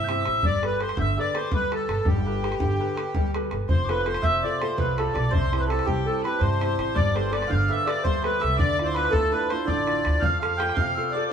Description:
celtic folk, Celtic slip jig; 110 BPM (dotted quarters); 9/8; straight; G mixolydian; A4 = 440 Hz
accordion; melody; 0.0-11.3 s; G4 to G5; -26 LUFS; equal
mellow tin whistle; second line; 0.0-11.3 s; G5 to G6; -34 LUFS; left 5 dB
bright baby grand piano; accompaniment; 0.0-11.3 s; C3 to B4; -29 LUFS; right 1 dB
upright bass; bass; 0.0-10.9 s; F1 to G2; -28 LUFS; right 1 dB
bodhran; percussion; 0.1-10.9 s; -28 LUFS; equal
hammered dulcimer; second line; 3.7-11.3 s; G4 to G5; -31 LUFS; right 4 dB
wet studio reverb, RT60 0.8 s; band playing live in one room; -22 LUFS; side -8 dB against mid
0.0-3.7 A section; 3.7-11.3 A section
0.4 Gadd9; 3.7 Fadd9; 5.3 C; 7.0 Gadd9; 8.6 Dmadd9; 10.2 Fadd9
| 0.43 0.97 1.51 | 2.06 2.60 3.15 | 3.69 4.23 4.78 | 5.32 5.87 6.41 | 6.96 7.50 8.05 | 8.59 9.14 9.68 | 10.22 10.77 11.31

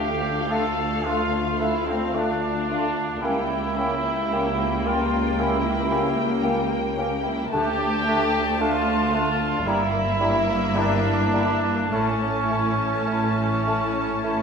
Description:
classical, slow romantic movement for symphony orchestra; 51-57 BPM; 4/4; rubato; D minor; A4 = 442 Hz
muted studio violin section; melody; 0.0-14.4 s; E5 to A5; -31 LUFS; left 5 dB
dark cor anglais; second line; 0.0-14.4 s; C4 to A4; -30 LUFS; right 2 dB
mellow hollow silver concert flute; second line; 0.0-14.4 s; F5 to Bb5; -34 LUFS; left 3 dB
muted studio violin section; second line; 0.0-14.4 s; G3 to F4; -33 LUFS; left 2 dB
warm clarinet; second line; 0.0-14.4 s; C#4 to E4; -36 LUFS; left 1 dB
mellow bassoon; accompaniment; 0.0-14.4 s; G3 to A#3; -32 LUFS; right 2 dB
muted studio viola section; accompaniment; 0.0-14.4 s; A3 to A#3; -31 LUFS; equal
mellow French horn section; sustained chords; 0.0-14.4 s; A3 to G4; -31 LUFS; left 4 dB
clear trumpet section; stabs; 0.0-14.4 s; C4 to A4; -27 LUFS; right 2 dB
muted studio cello section; bass; 0.0-14.4 s; C#2 to A2; -29 LUFS; right 2 dB
muted symphonic double bass section; bass; 0.0-14.4 s; G1 to D2; -31 LUFS; right 2 dB
timpani; percussion; 7.5-9.1 s; D3; -43 LUFS; left 1 dB
wet scoring stage reverb, RT60 2.0 s; minimal, uncompressed stereo recording; -20 LUFS; side -6 dB against mid
0.0-14.4 A section
0.0 Dm; 3.2 C#dim7; 7.5 Dm; 9.7 Edim/G; 11.9 A
1.05 2.14 | 3.23 4.32 5.39 6.46 | 7.53 8.60 9.66 10.76 | 11.92 13.09 14.24

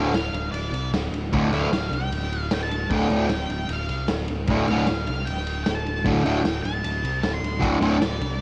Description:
garage rock duo or trio; 153 BPM; 4/4; straight; D minor; A4 = 435 Hz
octave-fuzz lead guitar; melody; 0.0-8.4 s; D5 to C6; -34 LUFS; equal; distortion, cassette tape
fuzz guitar; riff; 0.0-8.0 s; D2 to D3; -24 LUFS; equal; distortion, cassette tape
growling picked electric bass; bass; 0.0-8.4 s; D1 to C2; -31 LUFS; equal; overdrive
raw garage drum kit; drums; 0.1-8.3 s; kick drum, ride cymbal, snare drum; -30 LUFS; equal; cassette tape
light reverb, small room ambience; home recording on cassette; -24 LUFS; mono
0.0-8.4 A section
0.0 Dm
0.15 0.55 0.94 | 1.33 1.73 2.12 2.52 | 2.91 3.30 3.70 4.09 | 4.48 4.88 5.27 5.66 | 6.05 6.44 6.83 7.23 | 7.62 8.01 8.40

